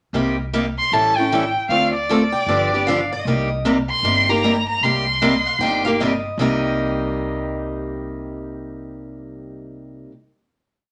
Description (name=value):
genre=acoustic string swing (jazz manouche)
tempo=154 BPM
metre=4/4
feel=swing 63% on 8ths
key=C minor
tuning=A4 = 439 Hz
part: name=picked steel-string acoustic guitar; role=accompaniment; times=0.1-10.1 s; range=C3 to A4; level=-23 LUFS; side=equal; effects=none
part: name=upright bass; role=bass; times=0.1-10.0 s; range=G1 to D2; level=-31 LUFS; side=equal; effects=none
part: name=warm violin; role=melody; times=0.8-6.0 s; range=D5 to C6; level=-21 LUFS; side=equal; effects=none
part: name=picked steel-string acoustic guitar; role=second line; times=2.3-10.1 s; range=Eb5 to G5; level=-29 LUFS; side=equal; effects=none
room=wet studio reverb, RT60 0.7 s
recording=none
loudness=-19 LUFS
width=mono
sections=0.1-6.4 A section; 6.4-9.5 final chord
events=none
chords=0.1 Cm7; 0.9 A7; 1.7 Dm7; 2.5 G7; 3.3 Cm7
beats=| 0.14 0.53 0.92 1.31 | 1.70 2.09 2.48 2.87 | 3.26 3.65 4.04 4.43 | 4.82 5.21 5.60 5.99 | 6.38 6.78 7.17 7.56 | 7.95 8.34 8.73 9.13